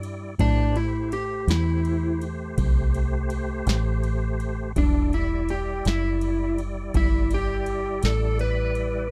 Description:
slow blues; 55 BPM (dotted quarters); 12/8; straight; E minor; A4 = 439 Hz
tonewheel organ; sustained chords; 0.0-9.1 s; G3 to D5; -36 LUFS; equal; chorus vibrato, fast rotary speaker
deep dub fingered electric bass; bass; 0.0-9.1 s; E1 to A2; -28 LUFS; equal
booming analog drum machine; drums; 0.0-8.9 s; kick drum, ride cymbal, snare drum; -28 LUFS; equal
electric slide guitar; melody; 0.4-9.1 s; D4 to B4; -29 LUFS; equal
little or no reverb; dry, close 1970s-style studio recording; -24 LUFS; mono
0.0-9.1 A section
electric slide guitar solo 0.0-9.1
0.4 Am7; 4.8 Em7

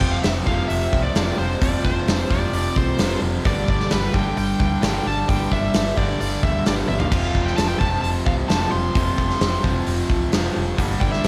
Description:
hard rock; 131 BPM; 4/4; straight; A4 = 440 Hz
bluesy overdriven lead guitar; melody; 0.0-11.3 s; B4 to C6; -29 LUFS; equal; distortion
percussive tonewheel organ; sustained chords; 0.0-11.3 s; F3 to A4; -38 LUFS; equal
distorted electric guitar; riff; 0.0-11.3 s; F2 to G3; -29 LUFS; equal; overdrive, slapback echo
overdriven semi-hollow guitar; riff; 0.0-11.3 s; F2 to G3; -31 LUFS; equal
hollow-body short-scale fingered electric bass; bass; 0.0-11.3 s; F1 to D2; -28 LUFS; equal
big rock drum kit; drums; 0.0-11.3 s; crash cymbal, hi-hat, kick drum, snare drum, toms; -24 LUFS; equal
light reverb, studio reverb; -21 LUFS; mono
0.0-11.3 A section
drum fill 6.9
0.0 F5; 3.5 G5; 7.1 F5

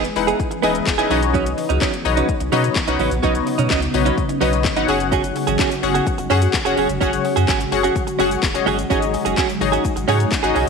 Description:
dance-pop; 127 BPM; 4/4; straight; A4 = 442 Hz
shimmering ambient pad; sustained chords; 0.0-10.7 s; C#3 to G#4; -24 LUFS; equal; chorus, built-in reverb, phaser, sidechain pumping
direct-recorded clean electric guitar; riff; 0.0-10.7 s; F#3 to G#4; -22 LUFS; right 13 dB; analog chorus
warm sub bass; bass; 0.0-10.7 s; D#1 to B2; -23 LUFS; equal; sidechain pumping
house drum kit; drums; 0.0-10.7 s; handclaps, hi-hat, kick drum, shaker, snare drum; -24 LUFS; left 2 dB
funky polysynth comp; accompaniment; 0.2-10.7 s; C#4 to F#5; -22 LUFS; left 11 dB; chorus, sidechain pumping
egg shaker; percussion; 5.1-10.5 s; -42 LUFS; left 11 dB
moderate echo chamber reverb, RT60 1.4 s; 1960s-style stereo with parts hard left and right; -16 LUFS; side -5 dB against mid
0.0-10.7 A section
0.0 Emaj7; 1.1 Badd9; 4.9 F#sus2; 8.9 G#7sus4

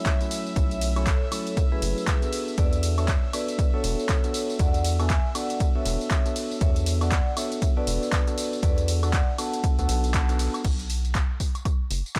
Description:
deep house; 119 BPM; 4/4; swing 59% on 16ths; A4 = 441 Hz
vibraphone with medium mallets; melody; 0.0-10.6 s; G#4 to A5; -35 LUFS; equal; tape echo
tine electric piano; stabs; 0.0-10.6 s; F#3 to A4; -34 LUFS; equal; sidechain pumping, analog delay
clear chamber violin section; texture; 0.0-10.7 s; E5 to E6; -44 LUFS; equal
electronic kick drum; drums; 0.1-12.2 s; -26 LUFS; equal
punchy analog drum machine; drums; 0.1-12.2 s; crash cymbal, handclaps, hi-hat, ride cymbal, tambourine, woodblock; -34 LUFS; equal
rubbery square bass; bass; 0.6-12.0 s; E1 to E2; -28 LUFS; equal; sidechain pumping
digital ambience; dry, gritty hardware recording; -25 LUFS; mono
0.0-10.6 A section; 10.6-12.2 B section
drop 0.0-10.6; band accent 10.1
0.0 B9sus4; 2.3 E9sus4; 10.6 N.C.

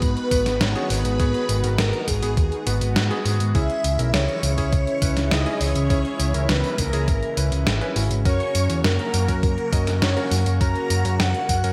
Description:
synthwave; 102 BPM; 4/4; straight; A4 = 440 Hz
soft octave-layered synth lead; melody; 0.0-11.7 s; G#4 to A#5; -30 LUFS; equal; chorus, phaser, cassette tape, delay
string machine, violins; second line; 0.0-11.7 s; G#4 to A#5; -36 LUFS; equal; ensemble chorus
lush unison pad; sustained chords; 0.0-11.7 s; C#3 to F#4; -33 LUFS; equal; chorus, phaser, sidechain pumping
picked electric bass; bass; 0.0-11.7 s; G#1 to G#2; -25 LUFS; equal; tube saturation, sidechain pumping
clean 12-bit digital drum machine; drums; 0.0-11.7 s; hi-hat, snare drum, tambourine; -28 LUFS; equal; gated reverb
electronic kick drum; drums; 0.0-11.6 s; -25 LUFS; equal
bright electric grand piano; stabs; 0.3-11.7 s; B3 to D#5; -32 LUFS; equal
light reverb, digital ambience; bright 1980s-style digital production; -21 LUFS; mono
0.0-11.7 A section
0.0 G#m7; 3.5 C#m; 8.3 F#

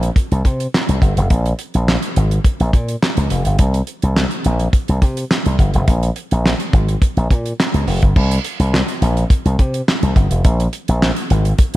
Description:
early-eighties boogie funk; 105 BPM; 4/4; straight; A4 = 440 Hz
slap bass with an envelope filter; bass; 0.0-11.8 s; F1 to C3; -16 LUFS; equal
damped 70s drum kit; drums; 0.0-11.8 s; crash cymbal, handclaps, hi-hat, kick drum, snare drum; -16 LUFS; equal
light reverb; -14 LUFS; side -16 dB against mid
0.0-8.2 A section; 8.2-11.8 B section

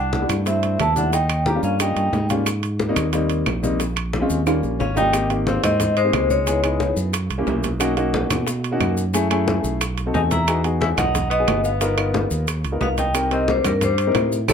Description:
Afro-Cuban jazz; 180 BPM; 4/4; straight; A4 = 441 Hz
vibraphone with medium mallets; melody; 0.0-2.3, 4.8-6.9, 10.1-14.5 s; A4 to Bb5; -22 LUFS; left 1 dB
warm tenor saxophone; second line; 0.0-2.3, 4.8-6.9, 10.1-14.5 s; G3 to G4; -28 LUFS; left 3 dB
modern bright fingered electric bass; bass; 0.0-14.5 s; G1 to B2; -23 LUFS; right 1 dB
bongos; percussion; 0.1-14.5 s; -33 LUFS; left 5 dB
congas; percussion; 0.1-14.5 s; -28 LUFS; left 2 dB
maracas; percussion; 0.1-14.5 s; -34 LUFS; left 3 dB
timbales; percussion; 0.1-14.5 s; -28 LUFS; right 9 dB
warm baby grand piano; accompaniment; 0.2-14.5 s; G3 to A#4; -24 LUFS; left 1 dB
claves; percussion; 0.3-14.5 s; -32 LUFS; right 3 dB
light reverb; -18 LUFS; side -7 dB against mid
0.0-5.1 A section; 5.1-14.5 B section
drum fill 4.5-5.1
0.0 C69; 1.1 Eb7; 2.5 Abmaj9; 3.8 Bbm7; 4.5 Eb7; 5.1 Abmaj7; 6.5 Dbm9; 7.1 Gb7b9; 7.8 Bmaj9; 9.1 Gbm9; 9.8 B7b9; 10.5 Emaj7; 11.8 G7alt; 13.1 Cm7

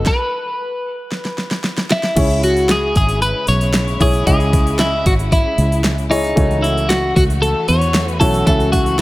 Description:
piano-driven pop; 114 BPM; 4/4; straight; C# minor; A4 = 440 Hz
twelve-string electric guitar; melody; 0.0-9.0 s; D#4 to C#5; -18 LUFS; left 1 dB; spring reverb
warm upright piano; accompaniment; 0.0-9.0 s; C#3 to E5; -22 LUFS; left 1 dB
warm studio string section; sustained chords; 0.0-9.0 s; C#3 to F#4; -26 LUFS; left 1 dB
fingered electric bass; bass; 0.0-9.0 s; G#1 to E2; -18 LUFS; equal
pop drum kit; drums; 0.1-9.0 s; crash cymbal, hi-hat, kick drum, snare drum; -18 LUFS; equal
light reverb; -14 LUFS; side -18 dB against mid
0.0-2.2 A section; 2.2-9.0 B section
stop 0.1-2.2; drum fill 1.1-2.2
0.1 N.C.; 2.2 C#m; 6.4 F#m7

